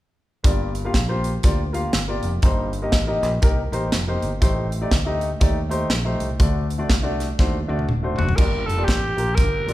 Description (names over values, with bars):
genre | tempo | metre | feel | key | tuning
uptempo gospel | 121 BPM | 4/4 | swing 61% on 8ths | G minor | A4 = 441 Hz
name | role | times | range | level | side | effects
warm grand piano | accompaniment | 0.4-9.7 s | G2 to F5 | -25 LUFS | left 1 dB | none
fingered electric bass | bass | 0.4-9.7 s | Eb1 to Eb2 | -25 LUFS | equal | none
modern studio drum kit | drums | 0.4-9.7 s | crash cymbal, hi-hat, kick drum, snare drum, toms | -21 LUFS | equal | none
growling alto saxophone | melody | 8.2-9.7 s | F#4 to Bb4 | -24 LUFS | right 1 dB | none
room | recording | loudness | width
moderate recital hall reverb, RT60 1.4 s | recorded in a church or concert hall | -19 LUFS | side -16 dB against mid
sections
0.4-8.4 A section; 8.4-9.7 B section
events
drum fill 7.4-8.4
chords
0.4 Gm7; 2.4 Cm7/G; 4.4 Am7b5; 6.4 D; 8.4 Gm7